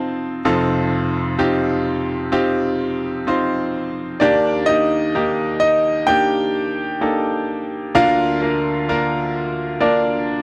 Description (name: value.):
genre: pop.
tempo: 64 BPM.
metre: 4/4.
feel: straight.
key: unclear.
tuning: A4 = 440 Hz.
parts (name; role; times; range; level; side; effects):
bright grand piano; melody; 0.0-10.4 s; D4 to A5; -21 LUFS; equal; none.
bright baby grand piano; accompaniment; 0.0-10.4 s; F1 to C5; -21 LUFS; equal; none.
room: little or no reverb.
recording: dry, close 1970s-style studio recording.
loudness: -19 LUFS.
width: mono.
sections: 0.0-4.2 A section; 4.2-10.4 B section.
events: none.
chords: 0.0 F7; 4.2 Ebmaj7; 8.0 Bb/D.